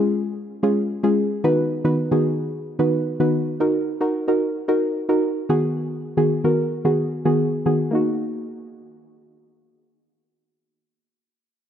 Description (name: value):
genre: pop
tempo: 111 BPM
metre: 4/4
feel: straight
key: Eb minor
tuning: A4 = 439 Hz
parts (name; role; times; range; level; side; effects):
- soft round pluck; solo; 0.0-11.0 s; D#3 to B4; -19 LUFS; equal; chorus, low-pass filter
room: light reverb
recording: none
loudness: -19 LUFS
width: side -9 dB against mid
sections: 0.0-3.6 A section; 3.6-7.9 B section; 7.9-11.7 C section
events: drop 0.0-3.6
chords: 0.0 Db; 1.4 B/D#; 3.6 Ebm; 5.5 Abm7/Eb; 7.9 Ebm